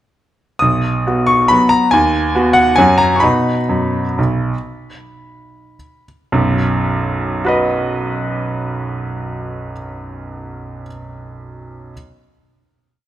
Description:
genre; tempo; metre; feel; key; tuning
classical, piano waltz; 101-145 BPM; 3/4; rubato; B major; A4 = 439 Hz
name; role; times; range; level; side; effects
bright baby grand piano; solo; 0.6-11.9 s; B1 to D#6; -14 LUFS; equal; none
room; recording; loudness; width
moderate recital hall reverb, RT60 1.7 s; close, detailed microphones; -13 LUFS; side -12 dB against mid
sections
0.6-6.3 A section; 6.3-9.7 final chord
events
slowing down 2.6-6.3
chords
0.6 B; 1.9 B/D#; 2.8 F#5; 3.2 B

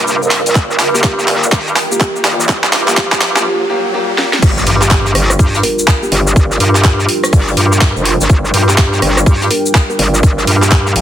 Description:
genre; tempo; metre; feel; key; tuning
bass house; 124 BPM; 4/4; swing 62% on 16ths; G minor; A4 = 442 Hz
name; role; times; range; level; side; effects
dark analog pad; sustained chords; 0.0-11.0 s; G3 to Bb4; -23 LUFS; right 1 dB; wide subtle chorus, sidechain pumping
warm grand piano; stabs; 0.0-4.3 s; Bb3 to Bb4; -21 LUFS; left 1 dB; sidechain pumping, ping-pong delay
metallic wobble bass; bass; 0.0-11.0 s; F1 to G2; -14 LUFS; equal; chorus, tube saturation, sidechain pumping, high-pass filter
riser and impact; sound effects; 0.1-6.4 s; none; -23 LUFS; equal; none
granular cloud pad; texture; 0.0-11.0 s; F4 to G5; -22 LUFS; right 3 dB; built-in reverb, sidechain pumping
garage drum kit; drums; 0.1-11.0 s; cabasa, crash cymbal, handclaps, hi-hat, rim click, snare drum; -15 LUFS; equal; overdrive
electronic kick drum; drums; 0.6-10.8 s; none; -10 LUFS; equal; none
buzzing kalimba; melody; 0.9-10.8 s; G4 to Bb4; -22 LUFS; right 1 dB; ping-pong delay
jazz brush drum kit; drums; 4.4-11.0 s; hi-hat, snare drum; -26 LUFS; left 3 dB; none
room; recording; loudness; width
light reverb, small room ambience; dense, heavily limited modern master, high-pass filter; -9 LUFS; side -11 dB against mid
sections
0.0-4.4 A section; 4.4-11.0 B section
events
build-up 0.0-4.4; drum fill 0.0-3.5, 4.2; riser 0.1-4.4; break 3.5-4.4; drop 4.4-11.0; impact 4.4-6.4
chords
0.0 Gm7

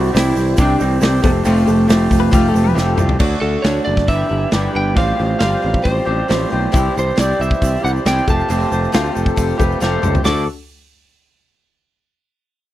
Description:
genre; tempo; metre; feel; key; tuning
folk rock and heartland rock; 136 BPM; 4/4; straight; unclear; A4 = 439 Hz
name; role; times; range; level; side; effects
lightly driven lead guitar; melody; 0.0-10.5 s; A3 to D6; -19 LUFS; right 1 dB; none
dark baby grand piano; accompaniment; 0.0-2.3, 6.7-10.5 s; C4 to C5; -27 LUFS; left 8 dB; none
picked twelve-string acoustic guitar; accompaniment; 0.0-10.4 s; A2 to C5; -25 LUFS; left 5 dB; none
electric guitar through a small old amp; riff; 0.0-10.4 s; G2 to G4; -21 LUFS; right 3 dB; none
picked electric bass; bass; 0.0-10.5 s; F1 to D2; -19 LUFS; equal; none
natural country drum kit; drums; 0.2-10.4 s; crash cymbal, hi-hat, kick drum, snare drum, toms; -18 LUFS; equal; none
egg shaker; percussion; 0.2-3.1, 6.8-10.5 s; none; -37 LUFS; right 17 dB; none
pedal steel guitar; second line; 2.2-3.0, 9.0-10.5 s; F4 to B4; -24 LUFS; left 12 dB; none
room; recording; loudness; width
little or no reverb; dry, close 1970s-style studio recording; -13 LUFS; side -14 dB against mid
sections
0.0-3.2 A section; 3.2-10.3 B section; 10.3-12.0 C section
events
drum fill 2.8-3.2, 9.8-10.3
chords
0.0 C; 1.2 Fadd9; 3.2 D; 4.1 G6; 5.0 Fadd9; 6.7 C; 8.3 Fadd9; 10.3 D

